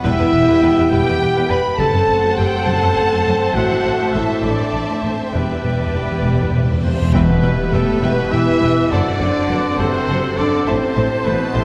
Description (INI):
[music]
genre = cinematic, epic orchestral film score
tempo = 68 BPM (dotted quarters)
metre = 6/8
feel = straight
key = E minor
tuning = A4 = 440 Hz
[part]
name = warm symphonic violin section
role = melody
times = 0.0-11.6 s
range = A4 to B5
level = -30 LUFS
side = equal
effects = none
[part]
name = warm symphonic violin section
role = second line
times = 0.0-11.6 s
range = E5 to A5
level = -31 LUFS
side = equal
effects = none
[part]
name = clear symphonic viola section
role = accompaniment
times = 0.0-11.6 s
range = A4 to E5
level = -32 LUFS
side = equal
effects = none
[part]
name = clear trombone section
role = sustained chords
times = 0.0-11.6 s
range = A2 to D4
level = -30 LUFS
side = equal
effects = none
[part]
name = mellow French horn section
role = sustained chords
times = 0.0-11.6 s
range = A3 to B4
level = -22 LUFS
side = equal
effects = none
[part]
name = rich symphonic string section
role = sustained chords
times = 0.0-11.6 s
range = A3 to A5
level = -28 LUFS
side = equal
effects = none
[part]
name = warm trumpet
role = stabs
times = 0.0-11.6 s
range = A4 to B5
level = -26 LUFS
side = equal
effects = none
[part]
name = timpani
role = percussion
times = 0.0-0.9, 5.3-8.0 s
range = E2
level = -24 LUFS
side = equal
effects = none
[part]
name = clear symphonic cello section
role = bass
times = 0.1-11.6 s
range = E2 to A2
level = -26 LUFS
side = equal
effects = none
[part]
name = warm symphonic double bass section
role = bass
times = 0.1-11.6 s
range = E1 to A1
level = -25 LUFS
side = equal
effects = none
[part]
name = reverse cymbal and impact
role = sound effects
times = 6.9-8.9 s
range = none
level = -29 LUFS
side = equal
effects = none
[part]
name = mellow hollow small flute group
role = second line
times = 8.0-11.6 s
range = A4 to E5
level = -28 LUFS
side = equal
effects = none
[sound]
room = wet scoring stage reverb, RT60 1.6 s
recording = heard from further back in the room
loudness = -17 LUFS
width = mono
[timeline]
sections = 0.0-7.1 A section; 7.1-11.6 B section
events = timpani fill 5.3-7.1; reverse cymbal 6.9; impact 7.1-8.9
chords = 0.0 Em; 1.8 F#dim; 3.5 Am; 5.3 Em7; 7.1 Em; 8.9 F#dim; 10.7 Am